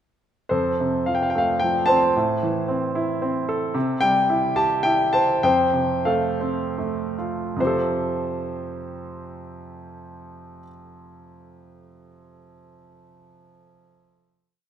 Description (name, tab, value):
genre	classical, lyrical solo piano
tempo	72-114 BPM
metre	3/4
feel	rubato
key	F major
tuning	A4 = 439 Hz
part	clear concert grand piano	solo	0.5-14.7 s	F2 to A5	-20 LUFS	equal	none
room	moderate concert hall reverb, RT60 1.8 s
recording	minimal, uncompressed stereo recording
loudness	-20 LUFS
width	side -9 dB against mid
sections	0.5-7.6 theme; 7.6-12.3 final chord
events	slowing down 3.8-7.6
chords	0.5 F; 2.2 Am; 3.8 C; 5.4 Fadd9